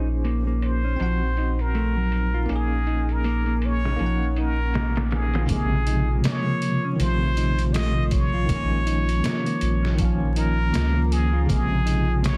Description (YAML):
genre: trip hop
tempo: 80 BPM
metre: 4/4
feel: swing 59% on 16ths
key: Bb minor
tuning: A4 = 441 Hz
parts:
  - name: barky tine electric piano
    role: accompaniment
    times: 0.0-12.4 s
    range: C3 to Gb5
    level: -30 LUFS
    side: equal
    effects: tremolo
  - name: warbly tape-like pad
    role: sustained chords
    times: 0.0-12.4 s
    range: F3 to F4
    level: -35 LUFS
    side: equal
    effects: chorus, built-in reverb
  - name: mellow electric guitar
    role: arpeggios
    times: 0.0-12.4 s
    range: F3 to F4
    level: -33 LUFS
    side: equal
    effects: vintage 12-bit sampler grit, delay
  - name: warm sub bass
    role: bass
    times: 0.0-12.4 s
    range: Bb1 to Db2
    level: -26 LUFS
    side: equal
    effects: none
  - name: trip hop sampler-style drum kit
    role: drums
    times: 0.2-12.4 s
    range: hi-hat, kick drum, snare drum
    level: -31 LUFS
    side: equal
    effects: low-pass filter on hats, low-pass filter on snare, low-pass filter on kick, low-pass filter on room
  - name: trumpet with plunger mute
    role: melody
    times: 0.6-12.4 s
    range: Ab4 to Eb5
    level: -32 LUFS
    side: equal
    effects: tape echo
room: little or no reverb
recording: dense, heavily limited modern master, vinyl crackle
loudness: -23 LUFS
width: mono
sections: 0.0-5.5 A section; 5.5-12.4 B section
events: none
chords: 0.0 Bbm9; 1.0 F7b9/Bb; 2.5 Absus24/Bb; 4.0 Gbmaj13/Bb; 5.5 Bbm9; 7.0 F7/Bb; 8.5 Db69/Bb; 10.0 Bbmadd11; 11.5 Bbm9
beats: 0.25 1.00 1.75 | 2.50 3.25 4.00 4.75 | 5.50 6.25 7.00 7.75 | 8.50 9.25 10.00 10.75 | 11.50 12.25